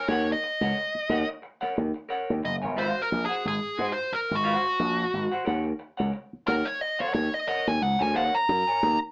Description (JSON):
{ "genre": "funk", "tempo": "89 BPM", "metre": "4/4", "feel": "swing 56% on 16ths", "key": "Eb dorian", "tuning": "A4 = 438 Hz", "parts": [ { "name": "nasal lead guitar with a parked wah", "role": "melody", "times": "0.0-9.0 s", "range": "Gb4 to Bb5", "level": "-29 LUFS", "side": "equal", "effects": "overdrive" }, { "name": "semi-hollow electric guitar", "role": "accompaniment", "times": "0.0-8.9 s", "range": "Gb4 to Ab5", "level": "-34 LUFS", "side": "equal", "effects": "none" }, { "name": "slap bass with an envelope filter", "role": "bass", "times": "0.1-9.0 s", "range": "Gb1 to Ab2", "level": "-31 LUFS", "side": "equal", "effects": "none" } ], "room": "moderate small room reverb, RT60 0.5 s", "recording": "band playing live in one room, small speaker sound", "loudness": "-27 LUFS", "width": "mono", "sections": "0.0-9.1 A section", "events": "lead electric guitar solo 0.0-9.1", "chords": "0.0 Ebm7; 2.8 Ab13; 5.5 Ebm7", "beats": "| 0.08 0.75 1.43 2.10 | 2.77 3.44 4.12 4.79 | 5.46 6.14 6.81 7.48 | 8.15 8.83" }